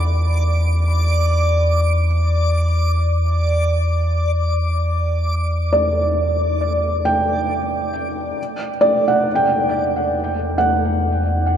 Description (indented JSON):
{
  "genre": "ambient",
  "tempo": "free time",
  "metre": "none",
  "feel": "none",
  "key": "E minor",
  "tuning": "A4 = 440 Hz",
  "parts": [
    { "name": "felt-muted upright piano", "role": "arpeggios", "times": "0.0-11.6 s", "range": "D5 to B5", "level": "-18 LUFS", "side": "right 1 dB", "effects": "tape echo" },
    { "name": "warm sub bass", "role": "bass", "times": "0.0-11.6 s", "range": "E2", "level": "-18 LUFS", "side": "equal", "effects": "none" },
    { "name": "backwards swelling texture", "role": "texture", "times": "0.0-8.4 s", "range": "D5 to D6", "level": "-25 LUFS", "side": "left 1 dB", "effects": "built-in reverb" }
  ],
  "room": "wet huge ambient reverb, RT60 8.2 s",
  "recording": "dark, warm production",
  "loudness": "-16 LUFS",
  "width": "side -9 dB against mid",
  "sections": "0.0-8.4 A section; 8.4-11.6 B section",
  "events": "none",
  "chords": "0.0 Em7",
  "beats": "free time"
}